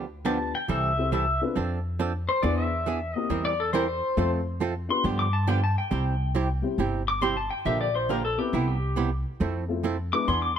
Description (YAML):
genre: country, western swing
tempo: 138 BPM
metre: 4/4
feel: swing 66% on 8ths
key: C major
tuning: A4 = 440 Hz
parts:
  - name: archtop guitar, miked and amplified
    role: accompaniment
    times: 0.0-10.5 s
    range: C3 to Bb4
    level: -29 LUFS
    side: right 6 dB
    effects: none
  - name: upright bass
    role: bass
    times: 0.0-10.6 s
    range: G1 to G2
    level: -28 LUFS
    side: equal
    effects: none
  - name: pedal steel guitar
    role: second line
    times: 0.3-10.6 s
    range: E4 to D6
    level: -27 LUFS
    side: left 2 dB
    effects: none
  - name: dark upright piano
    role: accompaniment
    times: 0.3-10.3 s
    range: G3 to C5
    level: -31 LUFS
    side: left 6 dB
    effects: none
room: light reverb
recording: none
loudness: -24 LUFS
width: side -8 dB against mid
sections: 0.0-10.6 A section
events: pedal steel guitar solo 0.0-10.6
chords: 0.0 G7; 0.7 C6; 1.6 F6; 2.4 E7; 3.3 C7/E; 4.2 F; 5.0 G7; 5.9 C; 7.7 Bb6; 8.5 Cmaj7; 9.4 Fmaj7